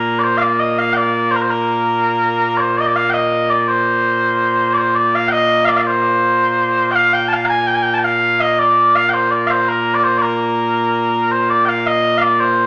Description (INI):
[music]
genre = scottish traditional, Scottish pipe music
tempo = 110 BPM (dotted quarters)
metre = 6/8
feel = straight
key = Bb major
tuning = A4 = 440 Hz
[part]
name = mellow small bagpipes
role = solo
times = 0.0-12.7 s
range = Bb2 to Bb5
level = -16 LUFS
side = equal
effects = none
[sound]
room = wet large studio reverb, RT60 1.0 s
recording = none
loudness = -16 LUFS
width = mono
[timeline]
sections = 0.0-2.6 A section; 2.6-11.3 B section; 11.3-12.7 B section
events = none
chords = none